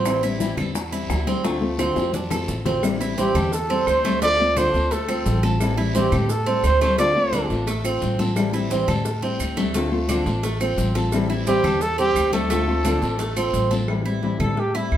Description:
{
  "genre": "latin, Cuban son and guajira",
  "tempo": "174 BPM",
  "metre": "4/4",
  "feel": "straight",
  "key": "A minor",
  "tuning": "A4 = 440 Hz",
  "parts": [
    { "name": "nylon-string guitar", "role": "accompaniment", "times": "0.0-15.0 s", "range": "D3 to F4", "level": "-25 LUFS", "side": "left 3 dB", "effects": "none" },
    { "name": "Cuban tres", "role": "arpeggios", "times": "0.0-15.0 s", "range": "A3 to A4", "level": "-26 LUFS", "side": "right 4 dB", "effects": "none" },
    { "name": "upright bass", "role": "bass", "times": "0.0-15.0 s", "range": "A1 to A2", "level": "-25 LUFS", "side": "equal", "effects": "none" },
    { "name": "bongos and cowbell", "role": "percussion", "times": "0.1-15.0 s", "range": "none", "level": "-33 LUFS", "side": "left 3 dB", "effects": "none" },
    { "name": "claves", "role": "percussion", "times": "0.1-15.0 s", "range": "none", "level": "-37 LUFS", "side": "right 3 dB", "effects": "none" },
    { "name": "congas", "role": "percussion", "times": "0.1-15.0 s", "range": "none", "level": "-31 LUFS", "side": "left 1 dB", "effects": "none" },
    { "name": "guiro", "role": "percussion", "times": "0.1-13.9 s", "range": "none", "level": "-39 LUFS", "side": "left 2 dB", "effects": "none" },
    { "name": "maracas", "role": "percussion", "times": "0.1-13.9 s", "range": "none", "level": "-39 LUFS", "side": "right 6 dB", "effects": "none" },
    { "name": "breathy trumpet", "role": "melody", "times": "3.2-7.5, 11.5-15.0 s", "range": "E4 to D5", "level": "-22 LUFS", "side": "right 1 dB", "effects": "none" }
  ],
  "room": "moderate large studio reverb, RT60 1.1 s",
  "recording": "band playing live in one room",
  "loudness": "-19 LUFS",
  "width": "side -11 dB against mid",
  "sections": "0.0-2.8 A section; 2.8-13.9 B section; 13.9-15.0 C section",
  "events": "drum fill 1.8-2.8; trumpet solo 13.9-15.0",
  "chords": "0.1 Am7; 1.4 Dm7; 2.8 Am7; 4.2 Dm7; 5.6 Am7; 7.0 Dm7; 8.4 Am7; 9.7 Dm7; 11.1 Am7; 12.5 Dm7; 13.9 Am7"
}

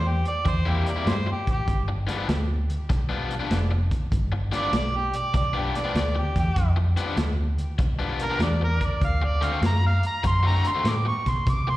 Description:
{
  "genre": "electric blues shuffle",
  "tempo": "98 BPM",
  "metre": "4/4",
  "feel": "swing 67% on 8ths",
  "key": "G mixolydian",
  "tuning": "A4 = 440 Hz",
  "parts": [
    { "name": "mellow harmonica", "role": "melody", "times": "0.0-11.8 s", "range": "G4 to D6", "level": "-28 LUFS", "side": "right 1 dB", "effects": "overdrive, slapback echo, digital delay" },
    { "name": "vintage muted fingered electric bass", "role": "bass", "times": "0.0-11.8 s", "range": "F1 to C3", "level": "-24 LUFS", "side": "equal", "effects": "none" },
    { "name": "crunchy breakbeat drum kit", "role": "drums", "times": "0.3-11.7 s", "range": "hi-hat, kick drum, snare drum", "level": "-28 LUFS", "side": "equal", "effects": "slapback echo" },
    { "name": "overdriven electric guitar", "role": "riff", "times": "0.5-11.7 s", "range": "G2 to F#4", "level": "-30 LUFS", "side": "left 5 dB", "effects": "slapback echo" }
  ],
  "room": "light reverb",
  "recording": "live gig heard through the venue's PA, recital hall reverb",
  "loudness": "-22 LUFS",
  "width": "side -16 dB against mid",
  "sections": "0.0-11.8 A section",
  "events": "none",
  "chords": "0.0 C7; 1.7 G7; 9.0 D7"
}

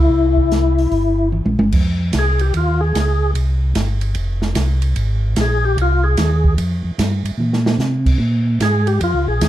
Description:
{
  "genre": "soul jazz organ trio",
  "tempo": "148 BPM",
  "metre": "4/4",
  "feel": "swing 66% on 8ths",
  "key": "F minor",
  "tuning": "A4 = 441 Hz",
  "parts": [
    { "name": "percussive tonewheel organ", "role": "melody", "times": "0.0-9.5 s", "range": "E4 to Ab4", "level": "-18 LUFS", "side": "left 3 dB", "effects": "slow rotary speaker, overdrive, chorus vibrato" },
    { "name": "mellow tonewheel organ", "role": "bass", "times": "0.0-9.5 s", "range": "F1 to C3", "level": "-17 LUFS", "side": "equal", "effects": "chorus vibrato, stopped rotary speaker" },
    { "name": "open jazz drum kit", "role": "drums", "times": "0.4-9.5 s", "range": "crash cymbal, hi-hat, kick drum, ride cymbal, snare drum, toms", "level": "-20 LUFS", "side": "right 1 dB", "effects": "none" }
  ],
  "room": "light reverb",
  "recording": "dark, warm production",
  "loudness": "-15 LUFS",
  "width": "side -13 dB against mid",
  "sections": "0.0-1.7 A section; 1.7-9.5 B section",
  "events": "drum fill 1.3-1.7, 7.4-7.8; tonewheel organ solo 1.7-9.5",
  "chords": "0.1 C7; 1.7 Fm9; 8.2 Bbm7"
}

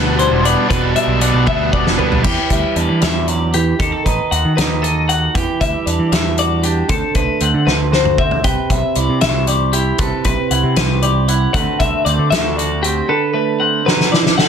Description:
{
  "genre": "math rock and midwest emo",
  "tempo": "78 BPM (dotted quarters)",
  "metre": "6/8",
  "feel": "straight",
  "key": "unclear",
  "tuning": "A4 = 441 Hz",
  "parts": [
    { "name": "twangy electric guitar", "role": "accompaniment", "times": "0.0-14.5 s", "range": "B2 to C5", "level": "-20 LUFS", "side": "right 8 dB", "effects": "none" },
    { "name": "twelve-string electric guitar", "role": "arpeggios", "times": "0.0-14.5 s", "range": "G4 to G5", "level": "-19 LUFS", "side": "left 6 dB", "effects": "none" },
    { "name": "crunchy overdriven guitar", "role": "riff", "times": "0.0-2.2 s", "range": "B2 to D4", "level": "-18 LUFS", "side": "right 1 dB", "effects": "none" },
    { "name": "growling picked electric bass", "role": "bass", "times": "0.0-13.0 s", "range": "E1 to E3", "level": "-18 LUFS", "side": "equal", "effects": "overdrive" },
    { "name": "loose indie drum kit", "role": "drums", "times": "0.2-14.5 s", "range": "crash cymbal, hi-hat, kick drum, snare drum, toms", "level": "-18 LUFS", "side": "equal", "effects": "none" }
  ],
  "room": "light reverb",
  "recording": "dense, heavily limited modern master",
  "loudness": "-13 LUFS",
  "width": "side -7 dB against mid",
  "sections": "0.0-2.3 A section; 2.3-14.5 B section",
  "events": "drum fill 1.5-2.3, 7.7-8.4, 13.9-14.5",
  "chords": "0.0 G6; 2.3 Em9; 3.8 B7; 5.4 Em9; 6.9 D9; 8.4 Cmaj9; 11.5 D13"
}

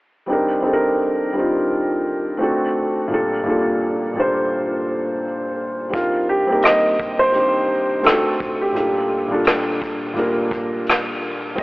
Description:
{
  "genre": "lo-fi hip hop",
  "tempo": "85 BPM",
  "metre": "4/4",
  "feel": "swing 59% on 16ths",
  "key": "C dorian",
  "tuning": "A4 = 440 Hz",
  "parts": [
    { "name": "felt-muted upright piano", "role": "accompaniment", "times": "0.3-11.6 s", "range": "Bb2 to C5", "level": "-19 LUFS", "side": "equal", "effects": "none" },
    { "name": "warm upright piano", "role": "melody", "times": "5.9-11.6 s", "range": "F4 to Eb5", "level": "-19 LUFS", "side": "equal", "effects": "analog delay" },
    { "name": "vintage brush drum kit", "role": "drums", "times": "5.9-11.6 s", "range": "hi-hat, kick drum, rim click", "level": "-22 LUFS", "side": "equal", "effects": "none" }
  ],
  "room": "wet huge ambient reverb, RT60 8.0 s",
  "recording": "cassette tape, telephone sound",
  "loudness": "-17 LUFS",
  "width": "side -21 dB against mid",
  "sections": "0.3-5.9 A section; 5.9-11.6 B section",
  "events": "none",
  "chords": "0.3 Cm7; 2.4 D7; 3.1 Gm7/Bb; 5.9 Cm7; 8.1 D7; 8.8 Gm7/Bb"
}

